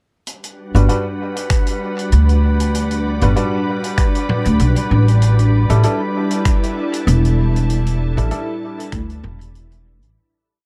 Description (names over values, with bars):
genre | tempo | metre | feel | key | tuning
ambient dub | 97 BPM | 4/4 | swing 55% on 16ths | unclear | A4 = 439 Hz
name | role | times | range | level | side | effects
soft additive organ-like pad | sustained chords | 0.3-10.2 s | G3 to D5 | -25 LUFS | equal | ensemble chorus, built-in reverb
vintage drum kit | drums | 0.3-10.1 s | finger snaps, hi-hat, toms | -29 LUFS | equal | dub echo
drifting glass-harmonics texture | texture | 0.6-10.2 s | B4 | -32 LUFS | equal | chorus, built-in reverb
clear upright piano | stabs | 0.7-8.5 s | G3 to B4 | -28 LUFS | equal | dub echo
upright bass | bass | 0.7-10.2 s | E1 to D2 | -16 LUFS | equal | none
electronic kick drum | drums | 1.5-9.1 s | none | -19 LUFS | equal | none
room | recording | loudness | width
small room ambience | dark, warm production | -16 LUFS | mono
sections
0.3-10.2 groove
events
fade-out 6.9-10.2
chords
0.3 Gmaj7; 5.2 A7sus4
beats
| 0.27 0.89 1.51 2.12 | 2.74 3.36 3.98 4.60 | 5.22 5.84 6.46 7.07 | 7.69 8.31 8.93 9.55